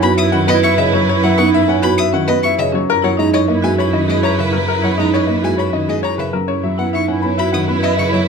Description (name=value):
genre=classical, minimalist pattern music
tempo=100 BPM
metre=3/4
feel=straight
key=F# mixolydian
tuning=A4 = 440 Hz
part: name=clear baby grand piano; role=melody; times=0.0-8.3 s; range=G#4 to B5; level=-20 LUFS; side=left 11 dB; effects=none
part: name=mellow clarinet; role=second line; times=0.0-8.3 s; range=E4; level=-25 LUFS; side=right 4 dB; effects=none
part: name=dark baby grand piano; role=accompaniment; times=0.0-8.3 s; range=C#3 to C#4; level=-22 LUFS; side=left 3 dB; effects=none
part: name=rich chamber violin section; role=sustained chords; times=0.0-8.3 s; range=E4 to B4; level=-23 LUFS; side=right 2 dB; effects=none
part: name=marimba with medium hard mallets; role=arpeggios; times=0.0-8.3 s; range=C#4 to C#5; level=-19 LUFS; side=right 7 dB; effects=none
part: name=rich violin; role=arpeggios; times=0.0-8.2 s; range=D#5 to D#6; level=-22 LUFS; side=left 4 dB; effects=none
part: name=rich cello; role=bass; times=0.0-8.3 s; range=F#2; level=-20 LUFS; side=right 3 dB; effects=none
room=light reverb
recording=close, detailed microphones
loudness=-13 LUFS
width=side -5 dB against mid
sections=0.0-6.5 A section; 6.5-8.3 B section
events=none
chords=0.0 F#7sus4; 2.9 C#m11/F#; 6.5 F#7sus4